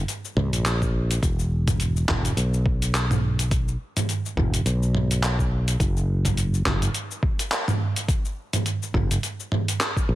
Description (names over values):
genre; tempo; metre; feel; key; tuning
sunset chillout; 105 BPM; 4/4; swing 57% on 16ths; unclear; A4 = 439 Hz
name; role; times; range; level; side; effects
fretless electric bass; bass; 0.0-10.2 s; E1 to C#2; -23 LUFS; equal; none
dusty soul sampler-style drum kit; drums; 0.1-10.1 s; handclaps, hi-hat, shaker, toms; -25 LUFS; right 1 dB; overdrive
electronic kick drum; drums; 0.8-10.1 s; none; -25 LUFS; equal; overdrive
room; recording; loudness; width
little or no reverb; dense, heavily limited modern master; -21 LUFS; side -15 dB against mid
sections
0.0-10.2 A section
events
none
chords
none